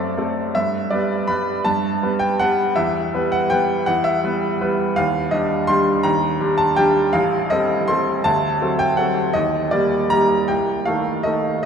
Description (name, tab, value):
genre	classical, piano waltz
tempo	149-175 BPM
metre	3/4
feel	rubato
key	unclear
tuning	A4 = 444 Hz
part	bright baby grand piano	solo	0.0-11.7 s	A1 to C6	-17 LUFS	equal	none
room	wet cathedral reverb, RT60 5.3 s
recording	recorded in a church or concert hall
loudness	-17 LUFS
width	side -7 dB against mid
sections	0.0-11.7 A section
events	none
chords	0.0 D7/F#; 0.6 G; 2.8 Em; 5.0 Ebmaj7; 7.1 Am7b5; 8.3 D7; 9.4 Ebmaj7; 10.5 Am7b5/C